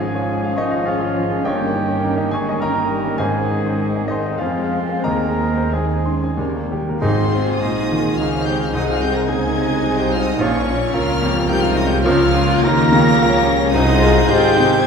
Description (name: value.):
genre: classical, romantic movement for piano and orchestra.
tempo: 89-113 BPM.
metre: 3/4.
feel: rubato.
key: Ab major.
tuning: A4 = 441 Hz.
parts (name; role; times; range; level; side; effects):
clear baby grand piano; melody; 0.0-14.9 s; Bb1 to Db6; -21 LUFS; left 1 dB; none.
warm chamber violin section; melody; 0.0-14.9 s; Eb4 to Bb6; -27 LUFS; left 4 dB; none.
clear clarinet; second line; 0.0-14.9 s; Bb3 to Bb4; -27 LUFS; equal; none.
clear oboe; second line; 0.0-14.9 s; Eb4 to C5; -31 LUFS; right 2 dB; none.
mellow silver concert flute; second line; 0.0-14.9 s; C5 to Bb5; -27 LUFS; equal; none.
warm chamber violin section; second line; 0.0-14.9 s; Bb3 to Eb5; -28 LUFS; left 1 dB; none.
dark chamber viola section; accompaniment; 0.0-14.8 s; G3 to F4; -26 LUFS; equal; none.
mellow bassoon; accompaniment; 0.0-14.9 s; Eb3 to Ab3; -29 LUFS; right 1 dB; none.
dark French horn section; sustained chords; 0.0-14.9 s; Eb3 to F4; -24 LUFS; left 2 dB; none.
dark chamber double bass section; bass; 0.0-14.8 s; G1 to F2; -24 LUFS; right 2 dB; none.
warm studio cello section; bass; 0.0-14.8 s; Ab2 to Bb3; -25 LUFS; right 2 dB; none.
timpani; percussion; 3.2-7.9 s; Ab2 to Eb3; -27 LUFS; equal; none.
room: wet scoring stage reverb, RT60 1.9 s.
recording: heard from further back in the room.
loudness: -15 LUFS.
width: side -6 dB against mid.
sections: 0.0-7.0 A section; 7.0-14.9 B section.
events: timpani fill 6.4-7.0.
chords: 0.0 Db/Ab; 1.4 Eb7/G; 3.2 Ab; 4.4 Fm; 5.1 Ab/Eb; 6.4 Eb; 7.0 Ab; 8.7 Ab/C; 10.4 Bbm; 12.0 Bbm/Db; 13.7 Ab.